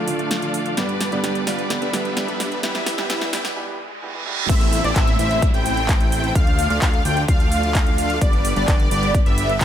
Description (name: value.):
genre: EDM, festival progressive house.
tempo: 129 BPM.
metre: 4/4.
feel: straight.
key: A minor.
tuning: A4 = 440 Hz.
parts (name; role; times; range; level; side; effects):
warm grand piano; accompaniment; 0.0-4.5 s; G2 to G4; -28 LUFS; right 3 dB; sidechain pumping, dub echo.
bright symphonic string section; sustained chords; 0.0-9.6 s; C3 to E5; -30 LUFS; left 2 dB; sidechain pumping, low-pass filter.
dense compressed supersaw; riff; 0.0-9.6 s; G3 to G5; -26 LUFS; right 1 dB; sidechain pumping, low-pass filter, dub echo.
riser, reverse cymbal and downlifter; sound effects; 3.6-8.2 s; none; -31 LUFS; right 4 dB; none.
big-room dance drum kit; drums; 0.1-9.6 s; crash cymbal, handclaps, hi-hat, snare drum; -26 LUFS; equal; none.
wide unison lead; arpeggios; 4.5-9.6 s; D5 to G5; -23 LUFS; equal; ensemble chorus, cassette tape, sidechain pumping, dub echo.
fat analog bass; bass; 4.5-9.6 s; G1 to D2; -24 LUFS; equal; sidechain pumping.
electronic kick drum; drums; 4.5-9.6 s; none; -18 LUFS; equal; none.
room: light reverb.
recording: high-pass filter.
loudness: -17 LUFS.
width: side -10 dB against mid.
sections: 0.0-4.5 A section; 4.5-9.6 B section.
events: build-up 0.0-4.5; drum fill 0.0-3.6; filter sweep on supersaw synth 0.0-4.5; filter sweep 0.0-4.5; break 3.6-4.5; reverse cymbal 3.6-4.5; drop 4.5-9.6.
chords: 0.0 Dm; 0.8 G; 2.6 Em; 4.5 Am; 6.4 Dm; 8.2 G.